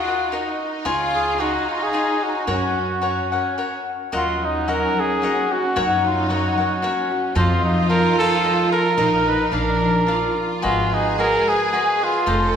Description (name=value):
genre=mexican folk, mariachi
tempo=111 BPM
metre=3/4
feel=swing 54% on 8ths, rubato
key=F# major, Eb minor from 4.1 s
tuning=A4 = 440 Hz
part: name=warm trumpet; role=melody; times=0.0-12.6 s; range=Eb4 to Cb5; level=-21 LUFS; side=right 1 dB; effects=none
part: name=warm symphonic violin section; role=second line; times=0.0-12.6 s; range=C#4 to A4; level=-25 LUFS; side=right 2 dB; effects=none
part: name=cavaquinho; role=accompaniment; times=0.0-12.6 s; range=D4 to F#5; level=-24 LUFS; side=left 3 dB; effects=none
part: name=upright bass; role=bass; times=0.9-12.6 s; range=F1 to F#2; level=-26 LUFS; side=right 1 dB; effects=none
part: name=concert harp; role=arpeggios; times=4.1-12.6 s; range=F3 to Ab4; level=-26 LUFS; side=left 2 dB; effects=none
room=wet recital hall reverb, RT60 1.6 s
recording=recorded in a church or concert hall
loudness=-18 LUFS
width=side -8 dB against mid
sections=0.0-4.1 A section; 4.1-12.6 B section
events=none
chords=0.0 D#m; 0.9 C#; 2.5 F#; 4.1 Ebm; 5.8 Gb; 7.4 F7; 9.0 Bbsus4; 9.5 Bb; 10.6 Abm7